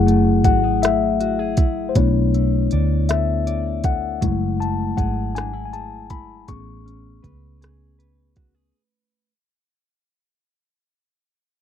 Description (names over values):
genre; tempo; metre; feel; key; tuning
slow six-eight R&B; 53 BPM (dotted quarters); 6/8; straight; F# minor; A4 = 440 Hz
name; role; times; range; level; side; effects
mellow electric guitar; second line; 0.0-9.3 s; F#3 to D5; -27 LUFS; right 9 dB; none
mellow tine electric piano; accompaniment; 0.0-8.8 s; G#3 to C#6; -21 LUFS; left 11 dB; none
vintage muted fingered electric bass; bass; 0.0-8.7 s; F#1 to D2; -22 LUFS; right 2 dB; none
smooth R&B drum kit; drums; 0.1-8.5 s; hi-hat, kick drum, rim click; -20 LUFS; right 2 dB; none
room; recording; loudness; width
little or no reverb; dry, close 1970s-style studio recording; -17 LUFS; side -9 dB against mid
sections
0.0-8.7 A section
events
fade-out 0.0-8.7; tine electric piano solo 0.0-8.7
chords
0.0 F#m9; 2.0 Bm11; 4.2 F#m9; 6.5 Amaj9